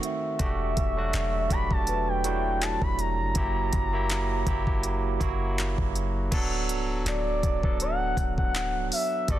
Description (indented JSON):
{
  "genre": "contemporary R&B",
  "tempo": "81 BPM",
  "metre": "4/4",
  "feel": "swing 54% on 16ths",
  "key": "unclear",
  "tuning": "A4 = 440 Hz",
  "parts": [
    { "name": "gliding portamento lead", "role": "melody", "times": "0.0-9.4 s", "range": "D5 to B5", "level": "-30 LUFS", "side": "left 1 dB", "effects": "chorus, tape echo" },
    { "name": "barky tine electric piano", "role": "accompaniment", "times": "0.0-9.4 s", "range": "D#3 to A4", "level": "-31 LUFS", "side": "right 6 dB", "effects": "overdrive, auto-pan" },
    { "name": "smooth R&B drum kit", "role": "drums", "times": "0.0-9.4 s", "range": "crash cymbal, handclaps, hi-hat, kick drum", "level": "-29 LUFS", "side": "equal", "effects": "none" },
    { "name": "clean 808-style bass", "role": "bass", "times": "0.4-9.4 s", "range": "C#1 to G1", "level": "-30 LUFS", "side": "equal", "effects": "none" },
    { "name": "worn celesta", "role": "texture", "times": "1.9-8.1 s", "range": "B4 to A5", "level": "-42 LUFS", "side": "left 7 dB", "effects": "none" }
  ],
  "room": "little or no reverb",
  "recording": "dense, heavily limited modern master",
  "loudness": "-24 LUFS",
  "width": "side -13 dB against mid",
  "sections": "0.0-6.3 A section; 6.3-9.4 B section",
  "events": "none",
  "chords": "0.4 Em11; 3.4 F#7b9; 6.3 D6"
}